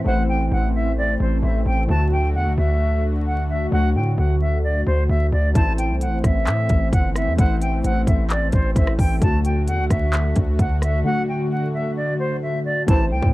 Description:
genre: hip hop, trap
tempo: 131 BPM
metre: 4/4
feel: half-time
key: unclear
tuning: A4 = 441 Hz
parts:
  - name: warbly lo-fi synth keys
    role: accompaniment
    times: 0.0-13.3 s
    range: D3 to C5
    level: -26 LUFS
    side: left 1 dB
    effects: chorus, plate reverb
  - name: warm analog pad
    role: sustained chords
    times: 0.0-13.3 s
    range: D3 to F#4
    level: -28 LUFS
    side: equal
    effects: chorus, tremolo, plate reverb
  - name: hard-hitting 808-style bass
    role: bass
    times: 0.0-13.3 s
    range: G1 to A2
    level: -20 LUFS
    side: equal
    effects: none
  - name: silver concert flute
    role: melody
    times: 0.1-13.3 s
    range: C5 to A5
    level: -26 LUFS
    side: equal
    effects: plate reverb
  - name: trap drum kit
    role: drums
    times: 5.6-13.3 s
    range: handclaps, hi-hat, kick drum, rim click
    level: -19 LUFS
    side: equal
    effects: none
  - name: mellow brass ensemble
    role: stabs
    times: 12.9-13.0 s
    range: A2 to E3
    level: -29 LUFS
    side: right 3 dB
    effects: plate reverb
room: light reverb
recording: dark, warm production, vinyl crackle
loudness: -18 LUFS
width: side -18 dB against mid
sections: 0.0-12.9 A section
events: break 11.0-12.9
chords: 0.0 Am; 1.9 D; 5.6 Am; 9.2 D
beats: | 0.06 0.51 0.97 1.43 | 1.89 2.35 2.80 3.26 | 3.72 4.18 4.64 5.09 | 5.55 6.01 6.47 6.93 | 7.38 7.84 8.30 8.76 | 9.22 9.68 10.13 10.59 | 11.05 11.51 11.96 12.42 | 12.88

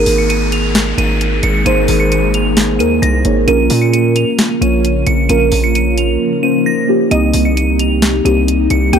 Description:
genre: hip hop, trap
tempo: 132 BPM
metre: 4/4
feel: half-time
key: Ab major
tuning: A4 = 440 Hz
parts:
  - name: delicate synth tine bell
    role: melody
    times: 0.0-9.0 s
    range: Bb6 to F7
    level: -20 LUFS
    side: right 2 dB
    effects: chorus, ping-pong delay
  - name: muted felt-like synth keys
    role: accompaniment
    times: 0.0-9.0 s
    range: Bb3 to Db5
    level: -15 LUFS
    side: right 1 dB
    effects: chorus, phaser
  - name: ethereal airy pad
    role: sustained chords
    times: 0.7-9.0 s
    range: C3 to Ab4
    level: -20 LUFS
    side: equal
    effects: ensemble chorus, built-in reverb, tremolo
  - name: hard-hitting 808-style bass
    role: bass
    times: 0.0-9.0 s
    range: Ab1 to Bb2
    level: -15 LUFS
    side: equal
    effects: none
  - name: downlifter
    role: sound effects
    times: 0.0-3.5 s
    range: none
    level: -25 LUFS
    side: left 1 dB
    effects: none
  - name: trap drum kit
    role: drums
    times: 0.1-9.0 s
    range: hi-hat, snare drum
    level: -17 LUFS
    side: left 1 dB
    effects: none
  - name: warbly dusty pluck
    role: second line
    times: 7.1-9.0 s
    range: Eb5 to G5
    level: -22 LUFS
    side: left 2 dB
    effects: chorus, ping-pong delay
room: digital ambience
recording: dark, warm production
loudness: -11 LUFS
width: side -7 dB against mid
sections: 0.0-9.0 A section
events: drums muted 6.2-7.1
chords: 0.0 Absus2; 3.5 Bbm; 7.1 Cm7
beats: 0.30 0.75 1.21 | 1.66 2.11 2.57 3.02 | 3.48 3.93 4.39 4.84 | 5.30 5.75 6.21 6.66 | 7.11 7.57 8.02 8.48 | 8.93

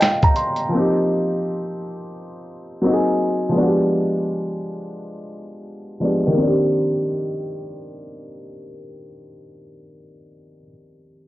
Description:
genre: lo-fi hip hop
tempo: 85 BPM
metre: 4/4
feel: swing 62% on 16ths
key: C minor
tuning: A4 = 439 Hz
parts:
  - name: dark upright piano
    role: accompaniment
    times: 0.0-11.3 s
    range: Eb3 to C6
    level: -20 LUFS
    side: equal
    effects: low-pass filter
  - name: dusty soul sampler-style drum kit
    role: drums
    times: 0.0-0.7 s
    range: finger snaps, hi-hat, kick drum, snare drum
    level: -17 LUFS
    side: equal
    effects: vintage 12-bit sampler grit
room: moderate studio ambience, RT60 0.5 s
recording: worn, warbling old tape, cassette tape, warbly pitch drift, nothing above 7.8 kHz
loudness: -18 LUFS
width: side -16 dB against mid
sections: 0.0-6.4 A section; 6.4-9.2 B section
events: filter sweep on upright piano 0.0-6.4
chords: 0.0 Fm9; 0.7 Eb69; 2.8 Ab9; 3.5 G7b9; 6.4 Cm9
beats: 0.01 | 0.71 1.42 2.12 2.83 | 3.54 4.24 4.95 5.65 | 6.36 7.06 7.77 8.48

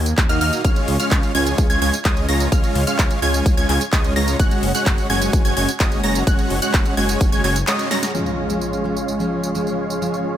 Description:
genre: EDM, festival progressive house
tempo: 128 BPM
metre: 4/4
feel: straight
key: Db major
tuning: A4 = 439 Hz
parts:
  - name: wide detuned saw bass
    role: bass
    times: 0.0-7.6 s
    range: Gb1 to Eb2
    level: -22 LUFS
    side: equal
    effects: chorus, sidechain pumping
  - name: big-room dance drum kit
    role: drums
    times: 0.1-10.2 s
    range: handclaps, hi-hat, snare drum, tambourine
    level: -26 LUFS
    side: equal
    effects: none
  - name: electronic kick drum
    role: drums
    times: 0.2-7.3 s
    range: none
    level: -18 LUFS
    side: equal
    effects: none
  - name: wide unison pluck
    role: arpeggios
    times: 0.3-8.1 s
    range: Eb6 to Bb6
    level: -25 LUFS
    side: equal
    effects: sidechain pumping, tape echo
  - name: dense compressed supersaw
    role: riff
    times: 0.3-10.4 s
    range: Ab3 to Bb5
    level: -22 LUFS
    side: right 1 dB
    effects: sidechain pumping, low-pass filter, tape echo
  - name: picked steel-string acoustic guitar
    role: accompaniment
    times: 8.1-10.3 s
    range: F3 to Ab4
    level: -24 LUFS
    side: left 1 dB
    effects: sidechain pumping, tape echo
  - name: impact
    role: sound effects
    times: 8.1-10.0 s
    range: none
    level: -33 LUFS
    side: equal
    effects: none
room: light reverb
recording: none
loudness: -16 LUFS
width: side -11 dB against mid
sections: 0.0-8.1 A section; 8.1-10.4 B section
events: drop 0.0-8.1; band accent 7.7; drum fill 7.9; impact 8.1-10.0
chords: 0.0 Ebm; 0.6 Db; 4.4 Gbsus2; 8.1 Db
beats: 0.18 | 0.65 1.11 1.58 2.05 | 2.52 2.99 3.46 3.93 | 4.39 4.86 5.33 5.80 | 6.27 6.74 7.21 7.68 | 8.14 8.61 9.08 9.55 | 10.02

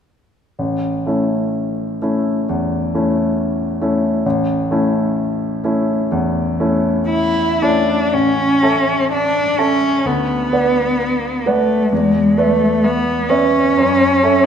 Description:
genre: classical, romantic duo for cello and grand piano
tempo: 64 BPM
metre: 4/4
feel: uneven beats, rubato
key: A major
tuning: A4 = 440 Hz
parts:
  - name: clear baby grand piano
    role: accompaniment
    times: 0.6-14.5 s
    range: A1 to A5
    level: -17 LUFS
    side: equal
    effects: none
  - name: warm cello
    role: melody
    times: 7.1-14.5 s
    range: G#3 to E4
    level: -15 LUFS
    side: equal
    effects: none
room: wet scoring stage reverb, RT60 1.8 s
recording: none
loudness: -14 LUFS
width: side -8 dB against mid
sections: 0.6-8.1 A section; 8.1-14.5 B section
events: none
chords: 0.6 A; 10.0 Bm/D; 11.9 E5; 13.8 F#m7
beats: | 0.58 1.53 2.48 3.37 | 4.25 5.16 6.10 7.09 | 8.13 9.11 10.05 10.99 | 11.91 12.83 13.75

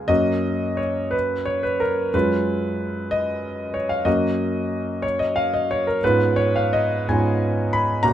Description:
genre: classical, romantic character piece for solo piano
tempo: 60 BPM (dotted quarters)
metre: 6/8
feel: uneven beats, rubato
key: F# major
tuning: A4 = 440 Hz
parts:
  - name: clear grand piano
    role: solo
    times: 0.0-8.1 s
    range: F#2 to B5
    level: -19 LUFS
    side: equal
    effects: none
room: little or no reverb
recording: close, detailed microphones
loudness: -19 LUFS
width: side -11 dB against mid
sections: 0.1-8.1 A section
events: none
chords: 0.1 F#; 2.1 C#7/F#; 4.1 F#; 6.0 C#7/G#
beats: | 0.09 1.13 | 2.14 3.11 | 4.06 5.03 | 6.02 7.07 | 8.03

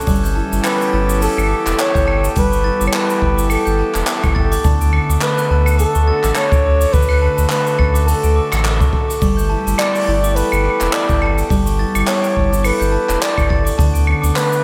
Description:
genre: folktronica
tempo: 105 BPM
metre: 4/4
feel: swing 56% on 16ths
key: unclear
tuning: A4 = 440 Hz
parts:
  - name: glockenspiel with hard plastic mallets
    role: second line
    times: 0.0-14.6 s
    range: A5 to D7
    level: -27 LUFS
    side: equal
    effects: tape echo
  - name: accordion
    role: sustained chords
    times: 0.0-14.6 s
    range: D3 to A4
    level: -29 LUFS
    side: equal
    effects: none
  - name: concert harp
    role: arpeggios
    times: 0.0-14.6 s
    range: D3 to A4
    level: -24 LUFS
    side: equal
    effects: tape echo
  - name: jazz brush drum kit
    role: drums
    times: 0.0-14.6 s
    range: cabasa, claves, handclaps, hi-hat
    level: -25 LUFS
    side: equal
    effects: none
  - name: warm sub bass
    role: bass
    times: 0.1-14.3 s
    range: E1 to D2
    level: -19 LUFS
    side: equal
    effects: none
  - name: kick drum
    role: drums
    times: 0.1-13.9 s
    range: none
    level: -22 LUFS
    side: equal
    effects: none
  - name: breathy flugelhorn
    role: melody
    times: 0.7-14.6 s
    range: A4 to D5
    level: -22 LUFS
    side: equal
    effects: tape echo
room: light reverb, small room ambience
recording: none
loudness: -16 LUFS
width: mono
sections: 0.0-14.6 A section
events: none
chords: 0.1 G69; 4.6 Dmaj7; 9.2 G69; 13.8 Dmaj7(no3)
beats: | 0.07 0.65 1.22 1.79 | 2.36 2.93 3.50 4.08 | 4.65 5.22 5.79 6.36 | 6.93 7.50 8.07 8.65 | 9.22 9.79 10.36 10.93 | 11.50 12.07 12.65 13.22 | 13.79 14.36

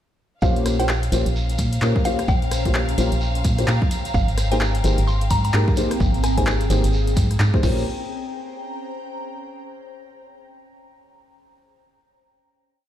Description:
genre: UK garage, two-step garage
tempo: 129 BPM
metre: 4/4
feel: swing 60% on 16ths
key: Bb dorian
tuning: A4 = 440 Hz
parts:
  - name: mallet-like synth pluck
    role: melody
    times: 0.4-6.4 s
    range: F5 to C6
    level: -29 LUFS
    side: equal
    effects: chorus, phaser, cassette tape, dub echo
  - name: rich studio violin section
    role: sustained chords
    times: 0.4-7.6 s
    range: F5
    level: -35 LUFS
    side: equal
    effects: sidechain pumping
  - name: dark grand piano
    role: stabs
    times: 0.4-7.8 s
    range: Bb3 to C5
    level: -26 LUFS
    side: left 2 dB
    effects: dub echo
  - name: organ-like FM bass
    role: bass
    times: 0.4-7.8 s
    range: Ab1 to Bb2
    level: -20 LUFS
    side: equal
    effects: none
  - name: electronic kick drum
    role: drums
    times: 0.4-7.7 s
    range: none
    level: -22 LUFS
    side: equal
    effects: overdrive
  - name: shekere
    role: percussion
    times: 0.4-7.8 s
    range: none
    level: -34 LUFS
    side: right 3 dB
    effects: none
  - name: ethereal airy pad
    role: texture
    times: 1.3-9.7 s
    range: C4 to Bb5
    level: -31 LUFS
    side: left 1 dB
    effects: ensemble chorus, built-in reverb, phaser, sidechain pumping
  - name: punchy analog drum machine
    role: drums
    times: 0.6-7.7 s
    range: crash cymbal, handclaps, hi-hat, rim click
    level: -29 LUFS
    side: left 1 dB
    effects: overdrive
room: little or no reverb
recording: played on a big sound system in a bare room, stone room reverb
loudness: -18 LUFS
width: side -11 dB against mid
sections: 0.4-7.9 drop; 7.9-9.7 final chord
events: drop 0.4-7.9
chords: 0.4 Bbm69; 4.1 Abmaj9; 7.6 Bbm69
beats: | 0.42 0.89 1.35 1.82 | 2.28 2.75 3.21 3.68 | 4.14 4.61 5.07 5.54 | 6.00 6.47 6.93 7.40 | 7.86 8.33 8.79 9.26

